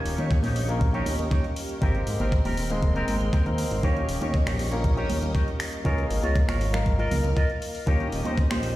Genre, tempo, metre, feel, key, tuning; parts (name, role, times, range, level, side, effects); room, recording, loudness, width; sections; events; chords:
nu-disco, nu disco; 119 BPM; 4/4; straight; Eb mixolydian; A4 = 439 Hz
warm concert grand piano; accompaniment; 0.0-8.7 s; Ab3 to Bb4; -32 LUFS; left 1 dB; ping-pong delay
string machine, full ensemble; sustained chords; 0.0-8.8 s; G4 to Db6; -37 LUFS; right 1 dB; phaser, ensemble chorus, sidechain pumping
fat analog bass; bass; 0.1-8.8 s; Eb1 to Ab2; -27 LUFS; equal
house drum kit; drums; 0.1-8.7 s; finger snaps, hi-hat; -36 LUFS; equal; small room ambience
electric guitar with an envelope filter; riff; 0.2-8.8 s; C4 to Eb5; -33 LUFS; equal; wide subtle chorus, ping-pong delay
congas; percussion; 0.2-8.6 s; -35 LUFS; right 2 dB
electronic kick drum; drums; 0.3-8.5 s; -23 LUFS; equal; small room ambience
digital ambience; played on a big sound system in a bare room, large studio reverb; -22 LUFS; side -16 dB against mid
0.0-8.8 A section
0.0 Eb7; 1.8 Abmaj9; 3.8 Eb7; 5.9 Db6; 7.9 Eb7